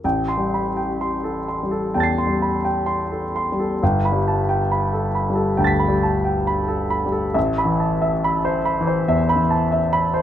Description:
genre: classical, impressionist solo piano.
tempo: 61-73 BPM.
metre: 4/4.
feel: rubato.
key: A minor.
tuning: A4 = 437 Hz.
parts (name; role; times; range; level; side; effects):
warm grand piano; solo; 0.0-10.2 s; G1 to C7; -18 LUFS; equal; none.
room: light reverb.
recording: close, detailed microphones.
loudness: -18 LUFS.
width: side -10 dB against mid.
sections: 0.0-10.2 A section.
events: none.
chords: 0.0 Am7; 3.8 Gadd9; 7.4 Amadd9.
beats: | 0.04 1.00 1.94 2.88 | 3.82 4.71 5.59 6.48 | 7.36 8.24 9.08 9.91.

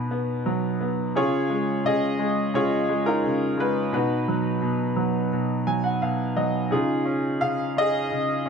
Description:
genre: acoustic folk-pop ballad.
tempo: 86 BPM.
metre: 4/4.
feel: straight.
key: Db mixolydian.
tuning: A4 = 437 Hz.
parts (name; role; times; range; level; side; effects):
bright grand piano; solo; 0.0-8.5 s; Cb3 to Ab5; -22 LUFS; equal; none.
room: moderate studio reverb, RT60 0.5 s.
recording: nothing above 10.9 kHz.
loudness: -22 LUFS.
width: side -6 dB against mid.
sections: 0.0-8.5 A section.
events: grand piano fill 5.3-6.7.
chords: 0.0 Cb; 1.1 Dbadd9; 3.9 Cb; 6.7 Dbadd9.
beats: 0.45 | 1.15 1.84 2.54 3.23 | 3.93 4.62 5.32 6.02 | 6.72 7.42 8.11.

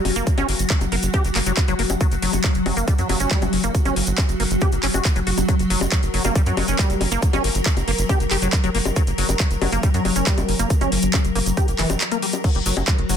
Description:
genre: psychedelic trance.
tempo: 138 BPM.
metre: 4/4.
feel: straight.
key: F# major.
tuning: A4 = 439 Hz.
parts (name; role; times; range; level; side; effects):
evolving wavetable pad; sustained chords; 0.0-13.2 s; F#3 to A#4; -26 LUFS; left 2 dB; ensemble chorus, built-in reverb, phaser, sidechain pumping.
liquid acid bass; riff; 0.0-13.2 s; E3 to G4; -26 LUFS; moving between left 7 dB and right 4 dB; chorus, auto-pan, sidechain pumping, ping-pong delay.
tight sequencer bass; bass; 0.1-13.2 s; F#1 to F#2; -24 LUFS; equal; none.
drum and bass drum kit; drums; 0.1-13.2 s; bongos, crash cymbal, handclaps, hi-hat; -24 LUFS; left 2 dB; none.
tube shaker; percussion; 0.2-13.2 s; none; -33 LUFS; right 3 dB; none.
electronic kick drum; drums; 0.3-13.0 s; none; -19 LUFS; equal; none.
room: digital ambience.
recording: dense, heavily limited modern master.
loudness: -18 LUFS.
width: side -8 dB against mid.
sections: 0.0-12.4 A section.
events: none.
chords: 0.0 F#5.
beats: | 0.27 0.70 1.14 1.57 | 2.01 2.44 2.88 3.31 | 3.75 4.18 4.62 5.05 | 5.49 5.92 6.36 6.79 | 7.22 7.66 8.09 8.53 | 8.96 9.40 9.83 10.27 | 10.70 11.14 11.57 12.01 | 12.44 12.88.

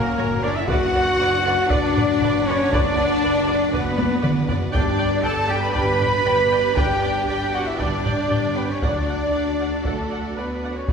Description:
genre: cinematic, epic orchestral film score.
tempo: 118 BPM.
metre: 4/4.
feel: straight.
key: B minor.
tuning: A4 = 440 Hz.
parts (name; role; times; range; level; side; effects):
warm symphonic violin section; melody; 0.0-10.9 s; A4 to B5; -32 LUFS; left 3 dB; none.
rich symphonic violin section; second line; 0.0-10.9 s; A4 to B5; -33 LUFS; equal; none.
silver concert flute; second line; 0.0-10.9 s; A4 to B5; -30 LUFS; left 2 dB; none.
bright trombone section; sustained chords; 0.0-10.9 s; F#3 to D4; -32 LUFS; right 2 dB; none.
clear symphonic string section; sustained chords; 0.0-10.9 s; C#4 to F#5; -30 LUFS; equal; none.
mellow French horn section; sustained chords; 0.0-10.9 s; A3 to B4; -24 LUFS; left 2 dB; none.
clear trumpet; stabs; 0.0-10.9 s; A4 to B5; -27 LUFS; right 1 dB; none.
clear symphonic double bass section; bass; 0.0-10.9 s; F#1 to D2; -28 LUFS; right 2 dB; none.
rich symphonic cello section; bass; 0.0-10.9 s; A3 to B4; -29 LUFS; right 1 dB; none.
warm symphonic viola section; accompaniment; 0.2-10.9 s; A#4 to G5; -31 LUFS; right 1 dB; none.
taiko ensemble; drums; 0.2-10.9 s; none; -25 LUFS; equal; none.
room: wet scoring stage reverb, RT60 1.6 s.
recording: heard from further back in the room.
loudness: -18 LUFS.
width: side -6 dB against mid.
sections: 0.0-10.9 A section.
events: drum fill 4.0-4.7.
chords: 0.0 F#; 0.7 Bm/F#; 4.7 G; 8.8 D.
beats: 0.17 | 0.68 1.19 1.70 2.21 | 2.71 3.22 3.73 4.23 | 4.74 5.24 5.75 6.26 | 6.77 7.28 7.79 8.30 | 8.81 9.32 9.84 10.35 | 10.87.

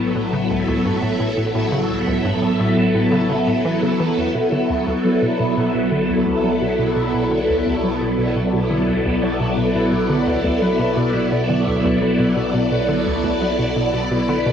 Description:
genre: ambient, sequencer-driven space music.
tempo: 86 BPM.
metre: 4/4.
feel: straight.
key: B minor.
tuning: A4 = 441 Hz.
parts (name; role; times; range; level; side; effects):
phased string machine; sustained chords; 0.0-14.5 s; F#3 to E5; -18 LUFS; equal; ensemble chorus, phaser, cassette tape, plate reverb.
Celtic harp; arpeggios; 0.0-14.5 s; A3 to B4; -30 LUFS; left 4 dB; auto-pan, cassette tape, ping-pong delay, plate reverb.
hollow square pluck; riff; 0.0-14.5 s; C#2 to F#3; -24 LUFS; equal; chorus, cassette tape, ping-pong delay.
analog drone; bass; 0.0-14.5 s; A1 to B1; -30 LUFS; equal; chorus.
room: wet booth ambience, RT60 0.2 s.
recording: home recording on cassette.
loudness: -16 LUFS.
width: side -8 dB against mid.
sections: 0.0-14.5 A section.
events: fade-in on harp 0.0-14.5.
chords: 0.0 Asus2; 4.3 Bm.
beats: 0.16 0.86 | 1.55 2.25 2.95 3.65 | 4.34 5.04 5.74 6.44 | 7.13 7.83 8.53 9.23 | 9.93 10.62 11.32 12.02 | 12.72 13.41 14.11.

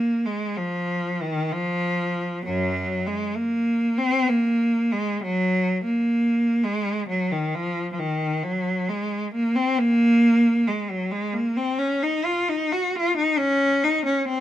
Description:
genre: classical, free, expressive piece for unaccompanied cello.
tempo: 66 BPM.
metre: 4/4.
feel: rubato.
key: unclear.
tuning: A4 = 440 Hz.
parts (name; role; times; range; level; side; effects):
rich cello; solo; 0.0-14.4 s; Gb2 to Gb4; -21 LUFS; equal; none.
room: light reverb.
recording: minimal, uncompressed stereo recording.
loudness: -21 LUFS.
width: side -12 dB against mid.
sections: 0.0-14.4 A section.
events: none.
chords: none.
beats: 0.58 1.53 | 2.46 3.36 4.29 5.22 | 6.16 7.07 7.97 8.86 | 9.76 10.65 11.55 12.48 | 13.39 14.29.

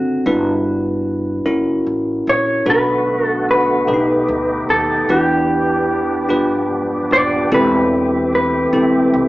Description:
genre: slow gospel.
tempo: 50 BPM (dotted quarters).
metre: 6/8.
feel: straight.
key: G major.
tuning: A4 = 439 Hz.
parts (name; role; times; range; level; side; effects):
mellow electric guitar; melody; 0.0-9.3 s; F#4 to D5; -18 LUFS; equal; none.
bell-like tine electric piano; accompaniment; 0.0-9.3 s; G2 to B4; -17 LUFS; equal; none.
upright bass; bass; 0.0-9.3 s; Eb1 to E2; -28 LUFS; equal; none.
bright tonewheel organ; sustained chords; 2.7-9.3 s; D3 to G4; -22 LUFS; equal; slow rotary speaker, chorus vibrato.
room: moderate large studio reverb, RT60 1.1 s.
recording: band playing live in one room, small speaker sound.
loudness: -14 LUFS.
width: side -18 dB against mid.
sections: 0.0-9.3 A section.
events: none.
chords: 0.3 G6; 1.5 F#7; 2.7 Bm7; 3.9 B7b13; 5.1 Em7; 6.3 G7; 7.5 C6/E.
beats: | 0.26 1.47 | 2.68 3.89 | 5.10 6.31 | 7.52 8.73.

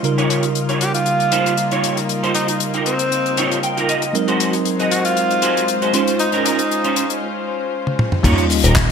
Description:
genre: nu-disco, nu disco.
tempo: 117 BPM.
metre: 4/4.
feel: swing 53% on 16ths.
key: Eb mixolydian.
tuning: A4 = 440 Hz.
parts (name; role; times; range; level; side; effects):
bell-like tine electric piano; accompaniment; 0.0-8.9 s; Db3 to C5; -22 LUFS; right 1 dB; slow stereo tremolo, sidechain pumping.
dark studio string section; sustained chords; 0.0-8.9 s; Gb3 to Eb5; -24 LUFS; left 2 dB; sidechain pumping.
damped 70s drum kit; drums; 0.0-8.9 s; crash cymbal, handclaps, hi-hat, shaker, toms; -22 LUFS; left 4 dB; gated reverb.
clean electric guitar; riff; 0.2-8.9 s; Db4 to G5; -22 LUFS; right 2 dB; ensemble chorus, low-pass filter.
clear tenor saxophone; melody; 0.8-7.2 s; C4 to G4; -21 LUFS; right 1 dB; digital delay.
chorused synth bass; bass; 8.2-8.9 s; Eb1 to Eb2; -15 LUFS; left 1 dB; sidechain pumping.
kick drum; drums; 8.2-8.9 s; none; -17 LUFS; left 1 dB; none.
sub drop; sound effects; 8.2-8.9 s; none; -21 LUFS; left 1 dB; none.
room: wet plate reverb, RT60 1.2 s, small room ambience.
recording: bright 1980s-style digital production.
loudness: -15 LUFS.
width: side -6 dB against mid.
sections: 0.0-8.2 A section.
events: filter sweep on drum 0.0-8.2; clean electric guitar fill 3.4-4.1; break 7.2-8.2; drum fill 7.9-8.2; impact 8.2-8.9.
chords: 0.0 Eb9; 4.1 Ab7; 5.9 Dbmaj7; 8.2 Eb9.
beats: | 0.04 0.56 1.07 1.58 | 2.09 2.61 3.12 3.63 | 4.14 4.66 5.17 5.68 | 6.20 6.71 7.22 7.73 | 8.25 8.76.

